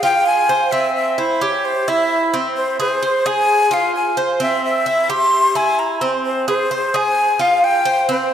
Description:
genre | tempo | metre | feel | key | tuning
latin | 130 BPM | 4/4 | straight | F harmonic minor | A4 = 440 Hz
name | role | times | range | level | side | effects
breathy jazz flute | melody | 0.0-8.3 s | C5 to C6 | -16 LUFS | left 1 dB | tape echo
Cuban tres | arpeggios | 0.0-8.3 s | C4 to C5 | -19 LUFS | right 2 dB | none
room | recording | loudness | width
wet plate reverb, RT60 2.6 s | dreamy mix soaked in reverb | -14 LUFS | side -9 dB against mid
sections
0.0-8.3 A section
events
none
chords
0.0 Fm; 0.7 C; 2.6 Fm; 4.4 C; 6.2 Fm

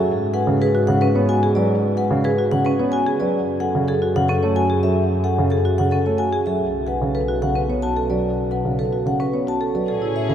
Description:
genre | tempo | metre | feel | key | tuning
classical, minimalist pattern music | 110 BPM | 3/4 | straight | unclear | A4 = 440 Hz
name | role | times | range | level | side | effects
vibraphone with medium mallets | melody | 0.0-10.3 s | A4 to A5 | -24 LUFS | left 5 dB | none
dark concert grand piano | accompaniment | 0.0-10.3 s | C#3 to B3 | -24 LUFS | right 2 dB | none
marimba with medium mallets | arpeggios | 0.0-10.3 s | C#4 to C#5 | -22 LUFS | right 3 dB | none
rich chamber double bass section | bass | 0.1-10.3 s | B1 to A2 | -24 LUFS | equal | none
rich chamber string section | sustained chords | 9.9-10.3 s | C#4 to G#4 | -28 LUFS | equal | none
room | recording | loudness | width
wet cathedral reverb, RT60 6.0 s | in a vast, echoing space, faint mains hum | -17 LUFS | side -9 dB against mid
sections
0.0-9.9 A section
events
none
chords
0.1 G#m7; 3.3 F#m; 6.6 B7(no3)

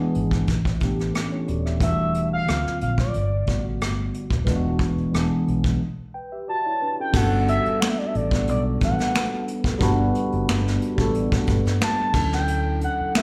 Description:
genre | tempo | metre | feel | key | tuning
R&B, neo-soul | 90 BPM | 4/4 | swing 53% on 16ths | unclear | A4 = 441 Hz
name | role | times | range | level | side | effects
mellow tine electric piano | accompaniment | 0.0-13.2 s | D3 to G5 | -27 LUFS | equal | phaser, slapback echo
vintage muted fingered electric bass | bass | 0.0-13.0 s | D#1 to G2 | -27 LUFS | equal | none
vintage brush drum kit | drums | 0.1-13.2 s | crash cymbal, finger snaps, hi-hat, kick drum, rim click, snare drum | -27 LUFS | equal | none
expressive synth lead | melody | 1.8-13.2 s | D5 to A5 | -28 LUFS | equal | chorus, slapback echo
room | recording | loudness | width
light reverb, small room ambience | live gig heard through the venue's PA, club reverb | -23 LUFS | mono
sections
0.0-7.1 A section; 7.1-13.2 B section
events
break 5.8-7.1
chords
0.5 A9sus4; 1.8 Em11; 2.5 D7alt; 3.1 Gmaj9; 4.5 E9; 5.1 E7; 5.8 N.C.; 7.1 Gmaj9; 12.1 Dmaj9

